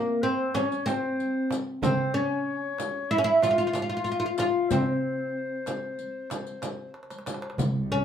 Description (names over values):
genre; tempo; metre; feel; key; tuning
Turkish makam ensemble; 188 BPM (eighths); 9/8; straight; C makam hicaz; A4 = 442 Hz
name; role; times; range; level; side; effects
oud; melody; 0.0-8.0 s; Bb3 to F4; -26 LUFS; equal; none
mellow clarinet; second line; 0.0-6.9 s; Bb4 to F5; -33 LUFS; left 4 dB; none
vintage hollow-body jazz guitar; second line; 0.0-6.9 s; Bb3 to F4; -32 LUFS; equal; none
darbuka; percussion; 0.2-7.7 s; none; -34 LUFS; equal; none
frame drum; percussion; 0.5-7.7 s; none; -35 LUFS; right 3 dB; none
riq; percussion; 0.6-7.7 s; none; -37 LUFS; left 2 dB; none
dark studio cello section; drone; 7.6-8.0 s; C2; -31 LUFS; equal; none
room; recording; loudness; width
wet small room reverb, RT60 0.6 s; heard from further back in the room; -25 LUFS; side -8 dB against mid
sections
0.0-7.6 A section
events
drum fill 6.9-7.6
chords
none